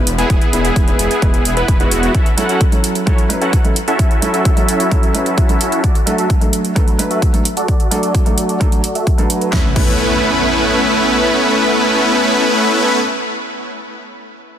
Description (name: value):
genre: EDM, festival progressive house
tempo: 130 BPM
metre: 4/4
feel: straight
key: A major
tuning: A4 = 439 Hz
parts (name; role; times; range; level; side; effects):
- felt-muted upright piano; accompaniment; 0.0-13.0 s; F#3 to B4; -21 LUFS; right 1 dB; sidechain pumping, ping-pong delay
- wide detuned saw bass; bass; 0.1-2.1 s; E1; -20 LUFS; equal; chorus, sidechain pumping
- big-room dance drum kit; drums; 0.1-9.9 s; crash cymbal, hi-hat, snare drum; -22 LUFS; right 2 dB; overdrive
- supersaw chords; riff; 0.2-13.0 s; A3 to F#5; -16 LUFS; equal; sidechain pumping, low-pass filter, ping-pong delay
- electronic kick drum; drums; 0.3-9.9 s; none; -14 LUFS; equal; overdrive
- impact; sound effects; 9.5-12.8 s; none; -25 LUFS; equal; none
room: light reverb, digital ambience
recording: dense, heavily limited modern master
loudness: -12 LUFS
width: side -10 dB against mid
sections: 0.0-9.5 A section; 9.5-13.2 B section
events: filter sweep on supersaw synth 0.0-9.5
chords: 0.0 E; 2.1 F#m7; 5.8 D; 9.5 Aadd9